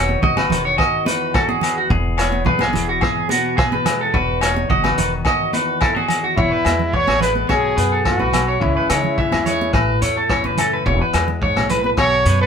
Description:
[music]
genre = highlife guitar band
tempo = 107 BPM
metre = 4/4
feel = straight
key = E major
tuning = A4 = 445 Hz
[part]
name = semi-hollow electric guitar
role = accompaniment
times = 0.0-12.5 s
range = E2 to G#4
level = -24 LUFS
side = left 4 dB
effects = none
[part]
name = electric guitar at the edge of break-up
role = arpeggios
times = 0.0-12.5 s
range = F#4 to E5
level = -20 LUFS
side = right 2 dB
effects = none
[part]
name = upright bass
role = bass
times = 0.0-12.5 s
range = E1 to C#3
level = -22 LUFS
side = equal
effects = none
[part]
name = congas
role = percussion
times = 0.1-12.1 s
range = none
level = -26 LUFS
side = right 4 dB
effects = none
[part]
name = vintage drum kit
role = drums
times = 0.2-12.4 s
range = hi-hat, kick drum, rim click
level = -22 LUFS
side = equal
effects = none
[part]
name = agogo bells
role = percussion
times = 0.4-12.1 s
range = none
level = -24 LUFS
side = left 4 dB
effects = none
[part]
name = breathy trumpet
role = melody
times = 6.4-12.5 s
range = E4 to C#5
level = -20 LUFS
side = equal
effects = none
[sound]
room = moderate studio ambience, RT60 0.5 s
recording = band playing live in one room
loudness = -15 LUFS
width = side -7 dB against mid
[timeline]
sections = 0.0-6.4 A section; 6.4-12.5 B section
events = none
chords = 0.0 B/E; 1.9 E; 4.1 B/E; 6.4 E; 7.5 B5; 8.6 C#m; 9.7 A; 10.9 E

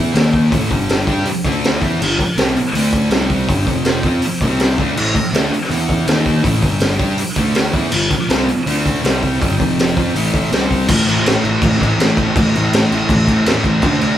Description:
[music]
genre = garage rock duo or trio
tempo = 162 BPM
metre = 4/4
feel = straight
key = A minor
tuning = A4 = 438 Hz
[part]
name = thick fuzz guitar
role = riff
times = 0.0-14.2 s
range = F2 to G4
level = -16 LUFS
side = equal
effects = distortion
[part]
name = fuzz picked electric bass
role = bass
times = 0.0-14.1 s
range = F1 to G2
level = -23 LUFS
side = equal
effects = overdrive
[part]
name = raw garage drum kit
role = drums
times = 0.2-14.1 s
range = crash cymbal, hi-hat, kick drum, snare drum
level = -17 LUFS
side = equal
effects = none
[sound]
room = moderate large studio reverb, RT60 1.3 s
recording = band playing live in one room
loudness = -13 LUFS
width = side -11 dB against mid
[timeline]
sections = 0.0-10.9 A section; 10.9-14.2 B section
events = none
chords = 0.1 D#5; 0.5 A5; 0.7 G5; 1.1 A7sus4; 1.4 D5; 1.8 E5; 2.0 G5; 2.7 D5; 3.1 C5; 3.5 G5; 3.7 F5; 4.0 G7sus4; 4.4 C5; 4.8 D5; 5.0 A5; 5.7 E5; 6.1 D#5; 6.4 A5; 6.6 G5; 7.0 A7sus4; 7.4 D5; 7.7 E5; 7.9 G5; 8.7 D5; 9.0 C5; 9.4 G5; 9.6 F5; 10.1 A5; 10.5 C5; 10.9 A5

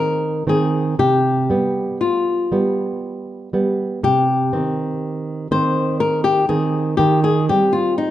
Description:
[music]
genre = romantic duo for nylon-string guitar and classical guitar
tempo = 60 BPM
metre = 3/4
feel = rubato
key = C minor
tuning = A4 = 441 Hz
[part]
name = flamenco guitar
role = melody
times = 0.0-8.1 s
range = Eb4 to C5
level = -19 LUFS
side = left 4 dB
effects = none
[part]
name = nylon-string guitar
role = accompaniment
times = 0.0-8.1 s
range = C3 to C4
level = -19 LUFS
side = right 3 dB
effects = none
[sound]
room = moderate recital hall reverb, RT60 1.7 s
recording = nothing above 10.6 kHz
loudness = -16 LUFS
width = side -12 dB against mid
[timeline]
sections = 0.0-8.1 A section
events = none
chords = 0.0 Cm; 1.0 G7/C; 4.0 Cm; 7.0 Cm/Eb

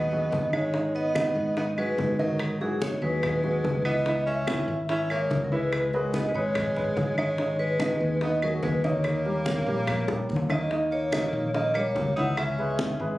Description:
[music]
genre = Afro-Cuban jazz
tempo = 144 BPM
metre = 4/4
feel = straight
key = G# minor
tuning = A4 = 440 Hz
[part]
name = vibraphone with medium mallets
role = melody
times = 0.0-13.2 s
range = G#4 to F#5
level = -28 LUFS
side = equal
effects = slapback echo
[part]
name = clear tenor saxophone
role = second line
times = 0.0-13.2 s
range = E3 to D#4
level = -34 LUFS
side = right 1 dB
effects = none
[part]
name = warm upright piano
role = accompaniment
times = 0.0-13.2 s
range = D#3 to E5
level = -31 LUFS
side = right 1 dB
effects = none
[part]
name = fingered electric bass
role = bass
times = 0.0-13.2 s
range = G#1 to G#2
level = -31 LUFS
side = equal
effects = none
[part]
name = bongos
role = percussion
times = 0.1-13.2 s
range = none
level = -36 LUFS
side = left 4 dB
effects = none
[part]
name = congas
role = percussion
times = 0.1-13.0 s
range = none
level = -34 LUFS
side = left 1 dB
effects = none
[part]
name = claves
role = percussion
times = 0.5-12.6 s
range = none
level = -35 LUFS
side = right 1 dB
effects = none
[sound]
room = light reverb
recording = recorded on a phone in the room, studio reverb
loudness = -24 LUFS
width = side -17 dB against mid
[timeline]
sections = 0.0-13.2 A section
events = drum fill 10.1-10.7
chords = 0.0 G#m7; 4.1 C#m7; 7.4 G#m7; 9.0 D#7; 12.4 C#m7

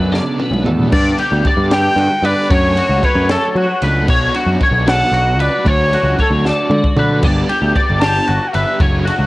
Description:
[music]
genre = math rock and midwest emo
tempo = 76 BPM (dotted quarters)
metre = 6/8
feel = straight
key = unclear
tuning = A4 = 440 Hz
[part]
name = twelve-string electric guitar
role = accompaniment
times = 0.0-2.5 s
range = A2 to D4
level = -26 LUFS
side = right 4 dB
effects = cassette tape
[part]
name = twangy electric guitar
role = arpeggios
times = 0.0-9.3 s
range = F#4 to D5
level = -19 LUFS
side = left 2 dB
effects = analog chorus, cassette tape
[part]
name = overdriven electric guitar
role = riff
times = 0.0-9.3 s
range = B2 to G4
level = -23 LUFS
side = right 1 dB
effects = tremolo, cassette tape
[part]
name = fuzz picked electric bass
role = bass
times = 0.0-9.3 s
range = F#1 to F#3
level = -16 LUFS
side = equal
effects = overdrive
[part]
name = compact cocktail drum kit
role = drums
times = 0.1-9.2 s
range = crash cymbal, kick drum, ride cymbal, snare drum, toms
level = -19 LUFS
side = equal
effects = none
[part]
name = clear trumpet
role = melody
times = 1.7-8.8 s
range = A4 to A5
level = -18 LUFS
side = equal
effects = cassette tape
[sound]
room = little or no reverb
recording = home recording on cassette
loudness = -12 LUFS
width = side -19 dB against mid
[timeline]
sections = 0.9-9.3 A section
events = drum fill 0.1-0.9, 6.4-7.2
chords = 0.0 Bm7; 0.9 Gmaj7; 2.5 Dmaj7; 4.1 Bm9; 5.7 Dmaj7; 7.2 Gmaj7

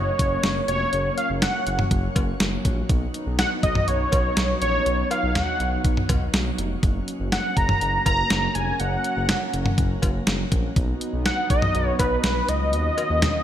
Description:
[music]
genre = synth-pop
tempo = 122 BPM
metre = 4/4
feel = straight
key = unclear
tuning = A4 = 438 Hz
[part]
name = wide unison lead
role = melody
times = 0.0-13.4 s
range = B4 to Bb5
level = -25 LUFS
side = equal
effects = shimmer reverb, ping-pong delay
[part]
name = warm analog pad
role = sustained chords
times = 0.0-13.4 s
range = Eb3 to Gb4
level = -30 LUFS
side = equal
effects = chorus, shimmer reverb
[part]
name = smooth gliding synth bass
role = bass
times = 0.0-13.3 s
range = F1 to Eb2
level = -26 LUFS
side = equal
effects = none
[part]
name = detuned 8-bit digital drum machine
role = drums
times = 0.2-13.3 s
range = cowbell, hi-hat, kick drum, snare drum, toms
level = -24 LUFS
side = equal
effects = gated reverb
[sound]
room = moderate plate reverb, RT60 2.3 s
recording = bright 1980s-style digital production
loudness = -20 LUFS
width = side -10 dB against mid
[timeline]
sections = 0.0-13.4 A section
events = none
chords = 0.0 Gb; 2.9 B; 6.8 Gb; 10.8 B; 12.7 Ebm7

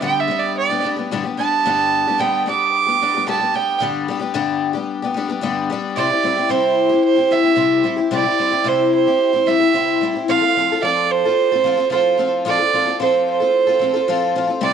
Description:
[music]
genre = rock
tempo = 111 BPM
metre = 4/4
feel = straight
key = C major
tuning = A4 = 440 Hz
[part]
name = warm fiddle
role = melody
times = 0.0-14.7 s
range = C5 to D6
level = -17 LUFS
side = right 7 dB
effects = none
[part]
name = picked twelve-string acoustic guitar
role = accompaniment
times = 0.0-14.7 s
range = G2 to A4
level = -19 LUFS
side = left 6 dB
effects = none
[sound]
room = moderate spring reverb, RT60 2.4 s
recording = home recording on cassette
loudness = -15 LUFS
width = side -7 dB against mid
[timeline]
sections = 0.0-3.8 A section; 3.8-6.0 B section; 6.0-14.7 C section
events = fiddle solo 0.0-3.8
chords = 0.0 G; 6.0 C; 10.3 F

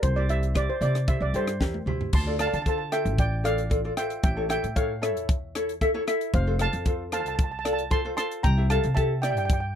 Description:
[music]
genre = calypso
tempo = 114 BPM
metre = 4/4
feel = straight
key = unclear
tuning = A4 = 440 Hz
[part]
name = steel pan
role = melody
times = 0.0-9.7 s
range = C5 to C6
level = -30 LUFS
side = right 2 dB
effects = none
[part]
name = upright bass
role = bass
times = 0.0-9.8 s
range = F1 to D3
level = -28 LUFS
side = equal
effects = none
[part]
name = crisp fusion drum kit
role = drums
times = 0.0-9.6 s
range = crash cymbal, hi-hat, kick drum, rim click, snare drum, toms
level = -27 LUFS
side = equal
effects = none
[part]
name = ukulele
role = accompaniment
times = 0.2-9.6 s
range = E4 to E5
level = -29 LUFS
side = left 1 dB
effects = none
[sound]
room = little or no reverb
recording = dry, close 1970s-style studio recording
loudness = -23 LUFS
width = side -9 dB against mid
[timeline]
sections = 0.0-2.1 A section; 2.1-9.8 B section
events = steel pan solo 0.0-2.1; drum fill 1.6-2.1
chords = 0.0 Cadd9; 2.1 Dm7; 4.2 A; 6.3 F; 8.4 C7

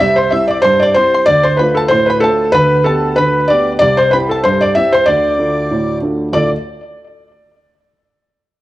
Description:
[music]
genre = celtic folk, Celtic reel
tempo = 190 BPM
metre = 4/4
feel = swing 56% on 8ths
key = D dorian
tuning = A4 = 441 Hz
[part]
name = felt-muted upright piano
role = melody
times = 0.0-6.5 s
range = A4 to E5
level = -12 LUFS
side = equal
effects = plate reverb, tape echo
[part]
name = bluegrass banjo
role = second line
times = 0.0-6.5 s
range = D5 to C6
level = -22 LUFS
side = equal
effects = cassette tape, plate reverb
[part]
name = mellow accordion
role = second line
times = 0.0-6.5 s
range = A4 to E5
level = -21 LUFS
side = left 1 dB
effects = cassette tape, plate reverb
[part]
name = dark upright piano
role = accompaniment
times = 0.0-6.5 s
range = C2 to A4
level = -17 LUFS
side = right 1 dB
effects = cassette tape, plate reverb
[sound]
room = moderate studio reverb, RT60 0.5 s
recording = home recording on cassette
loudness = -10 LUFS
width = side -16 dB against mid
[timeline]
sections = 0.0-6.3 A section; 6.3-7.6 B section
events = none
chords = 0.0 C; 1.3 Dm; 2.5 G/D; 3.8 C; 5.1 Dm

